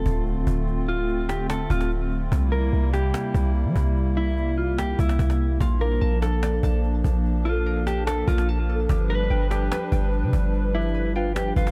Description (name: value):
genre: hip hop, atmospheric cloud-rap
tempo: 146 BPM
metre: 4/4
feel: half-time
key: unclear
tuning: A4 = 441 Hz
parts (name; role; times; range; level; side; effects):
- mellow electric guitar; melody; 0.0-11.7 s; E4 to B4; -32 LUFS; equal; subtle chorus, digital delay
- hollow soft pad; sustained chords; 0.0-11.7 s; C3 to B4; -31 LUFS; equal; chorus
- warm 808-style bass; bass; 0.0-11.7 s; D1 to G3; -25 LUFS; equal; none
- impact; sound effects; 0.3-0.7 s; none; barely audible; none; none
- cajon; drums; 0.1-11.7 s; none; -34 LUFS; equal; none
- concert harp; arpeggios; 5.6-11.7 s; Bb3 to A5; -37 LUFS; equal; digital delay
room: small room ambience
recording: none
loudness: -23 LUFS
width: mono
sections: 0.0-11.7 A section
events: impact 0.0-0.7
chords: 0.0 Dm7; 2.3 C7; 5.6 Bbmaj7; 8.9 G7